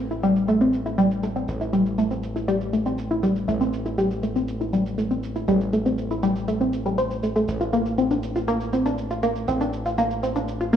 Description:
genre	melodic techno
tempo	120 BPM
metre	4/4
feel	straight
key	A phrygian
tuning	A4 = 440 Hz
part	gritty driven synth bass	bass	0.0-10.8 s	A1	-29 LUFS	equal	none
part	analog pluck	arpeggios	0.1-10.8 s	G3 to C5	-22 LUFS	equal	chorus, phaser, digital delay
part	shaker	drums	0.1-10.8 s	none	-48 LUFS	right 6 dB	low-pass filter on snare, low-pass filter on perc, low-pass filter on hats
room	wet scoring stage reverb, RT60 1.6 s, digital ambience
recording	small room ambience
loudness	-21 LUFS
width	side -9 dB against mid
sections	0.0-10.8 A section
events	filter sweep on synth arpeggio sound 0.0-10.8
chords	0.0 A7(no3); 7.5 N.C.

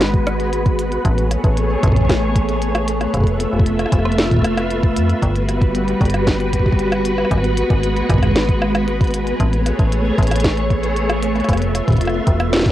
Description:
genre	IDM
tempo	115 BPM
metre	4/4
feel	straight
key	unclear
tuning	A4 = 439 Hz
part	soft string machine	sustained chords	0.0-12.7 s	G3 to E5	-20 LUFS	equal	ensemble chorus, vintage 12-bit sampler grit, cassette tape
part	metallic FM bass	bass	0.0-12.7 s	E1 to F2	-20 LUFS	equal	tube saturation
part	glitchy drum kit	drums	0.0-12.7 s	hi-hat, rim click, snare drum	-22 LUFS	equal	overdrive
part	flickering grainy texture	texture	0.2-12.7 s	B3 to B4	-27 LUFS	left 1 dB	built-in reverb, cassette tape
part	electronic kick drum	drums	0.1-12.7 s	none	-16 LUFS	equal	overdrive
room	light reverb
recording	home recording on cassette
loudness	-15 LUFS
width	side -13 dB against mid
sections	0.0-12.7 A section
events	drum fill 12.5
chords	0.0 G#m7; 1.1 Amaj7; 3.1 Fmaj7; 5.2 Gmaj7; 7.3 G#m7; 9.4 Amaj7; 11.5 Fmaj7

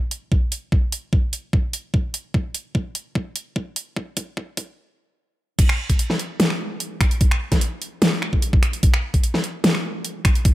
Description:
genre	dubstep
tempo	148 BPM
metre	4/4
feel	half-time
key	none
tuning	none
part	dubstep drum kit	drums	0.1-10.5 s	crash cymbal, finger snaps, hi-hat, snare drum	-22 LUFS	equal	overdrive
part	electronic kick drum	drums	0.3-10.5 s	none	-18 LUFS	equal	overdrive
room	little or no reverb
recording	high-pass filter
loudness	-20 LUFS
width	side -16 dB against mid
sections	0.0-5.6 A section; 5.6-10.5 B section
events	build-up 0.0-5.6; filter sweep 0.0-5.6; drum fill 2.3-4.8; drop 5.6-10.5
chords	none

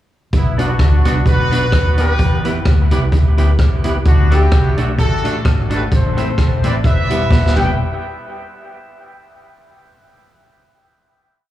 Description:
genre	ska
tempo	129 BPM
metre	4/4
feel	swing 55% on 8ths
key	E minor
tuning	A4 = 440 Hz
part	clear horn section	melody	0.3-7.8 s	B3 to G5	-22 LUFS	left 1 dB	dub echo, slapback echo
part	vintage muted fingered electric bass	bass	0.3-7.8 s	D#1 to E2	-15 LUFS	equal	none
part	street-band drum kit	drums	0.3-7.7 s	crash cymbal, hi-hat, kick drum, rim click, snare drum	-16 LUFS	equal	none
part	electric guitar at the edge of break-up	accompaniment	0.6-7.7 s	G3 to G4	-24 LUFS	right 3 dB	dub echo, slapback echo
part	percussive tonewheel organ	stabs	0.6-7.7 s	B3 to B4	-27 LUFS	left 2 dB	overdrive, chorus vibrato, slow rotary speaker, dub echo, slapback echo
room	studio reverb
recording	live gig heard through the venue's PA, club reverb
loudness	-12 LUFS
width	side -13 dB against mid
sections	0.3-7.8 A section; 7.8-9.6 final hit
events	drum fill 7.3-7.8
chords	0.3 Bm; 2.2 Em; 4.1 D; 5.9 Am; 6.8 Em; 7.8 N.C.

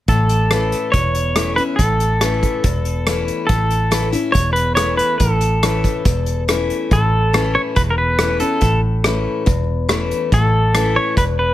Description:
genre	honky-tonk and classic country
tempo	141 BPM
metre	4/4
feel	straight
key	A major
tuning	A4 = 440 Hz
part	pedal steel guitar	melody	0.1-11.5 s	A4 to C#5	-19 LUFS	right 1 dB	none
part	picked steel-string acoustic guitar	accompaniment	0.1-11.5 s	E2 to E4	-22 LUFS	left 4 dB	none
part	vintage muted fingered electric bass	bass	0.1-11.5 s	E1 to A1	-19 LUFS	right 1 dB	none
part	unplugged drum kit	drums	0.1-11.3 s	hi-hat, kick drum, rim click	-19 LUFS	equal	none
room	little or no reverb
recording	none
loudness	-15 LUFS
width	side -14 dB against mid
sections	0.1-6.9 A section; 6.9-11.5 B section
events	none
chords	0.1 A

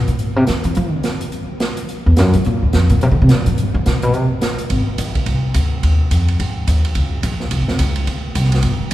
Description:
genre	jazz, small-group swing and bop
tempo	213 BPM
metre	4/4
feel	swing 60% on 8ths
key	unclear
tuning	A4 = 438 Hz
part	upright bass	bass	0.0-8.9 s	F1 to F3	-15 LUFS	equal	none
part	open jazz drum kit	drums	0.1-8.9 s	hi-hat, kick drum, ride cymbal, snare drum	-23 LUFS	right 2 dB	none
room	wet cathedral reverb, RT60 5.2 s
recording	recorded in a church or concert hall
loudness	-14 LUFS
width	side -14 dB against mid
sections	0.0-4.7 A section; 4.7-8.9 B section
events	upright bass solo 0.0-4.7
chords	none

